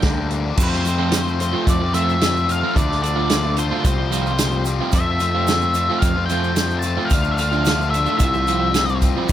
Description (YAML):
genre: indie rock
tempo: 110 BPM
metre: 4/4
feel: straight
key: F major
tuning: A4 = 440 Hz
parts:
  - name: octave-fuzz lead guitar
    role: melody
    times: 0.0-9.0 s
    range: C5 to A5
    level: -23 LUFS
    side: left 2 dB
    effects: distortion
  - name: crunchy overdriven guitar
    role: riff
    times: 0.0-9.3 s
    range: D3 to F4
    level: -27 LUFS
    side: right 11 dB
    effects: lush chorus
  - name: overdriven electric guitar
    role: riff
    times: 0.0-9.3 s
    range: G2 to F4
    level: -24 LUFS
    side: left 7 dB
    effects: none
  - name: growling picked electric bass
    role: bass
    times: 0.0-9.3 s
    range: C2 to F2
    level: -22 LUFS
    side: equal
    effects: overdrive
  - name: vintage drum kit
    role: drums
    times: 0.0-9.3 s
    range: crash cymbal, hi-hat, kick drum, snare drum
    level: -21 LUFS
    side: right 1 dB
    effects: none
  - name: ensemble organ-string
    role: sustained chords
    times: 0.6-9.3 s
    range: F3 to A5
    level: -35 LUFS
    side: right 1 dB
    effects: none
  - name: egg shaker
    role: percussion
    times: 0.6-9.3 s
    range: none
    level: -36 LUFS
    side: right 7 dB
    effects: none
  - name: tine electric piano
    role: second line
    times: 8.2-9.3 s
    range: D4 to E4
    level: -31 LUFS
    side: right 4 dB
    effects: wide subtle chorus, digital delay
room: light reverb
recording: none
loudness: -16 LUFS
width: side -11 dB against mid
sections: 0.6-9.3 A section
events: none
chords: 0.0 Gm; 0.6 F; 2.8 Dm; 3.9 Csus4; 4.9 F; 7.1 Dm; 8.2 Csus4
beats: 0.04 | 0.59 1.13 1.68 2.22 | 2.76 3.31 3.85 4.40 | 4.94 5.49 6.03 6.58 | 7.12 7.66 8.21 8.75 | 9.30